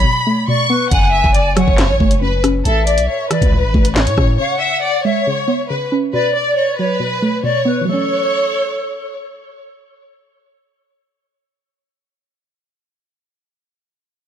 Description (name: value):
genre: hip hop, drill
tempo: 138 BPM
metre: 4/4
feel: half-time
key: F# minor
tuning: A4 = 440 Hz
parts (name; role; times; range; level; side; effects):
- warm studio violin section; melody; 0.0-9.1 s; A4 to C#6; -18 LUFS; left 1 dB; ping-pong delay
- bright reedy polished pan flute; second line; 0.0-9.1 s; A4 to G#5; -21 LUFS; equal; ping-pong delay
- soft round pluck; accompaniment; 0.0-11.9 s; F#2 to C#4; -20 LUFS; right 1 dB; chorus
- long sustained 808-style bass; bass; 0.0-4.4 s; F#1 to A2; -18 LUFS; equal; none
- drill drum kit; drums; 0.9-4.3 s; handclaps, hi-hat, kick drum, rim click, snare drum; -15 LUFS; equal; none
room: little or no reverb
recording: none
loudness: -13 LUFS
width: side -9 dB against mid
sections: 0.9-7.9 A section; 7.9-11.3 B section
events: break 0.0-0.9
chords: 0.0 Bm7; 0.9 F#m; 2.7 A; 4.4 C#5; 6.1 Bm7; 7.9 F#m7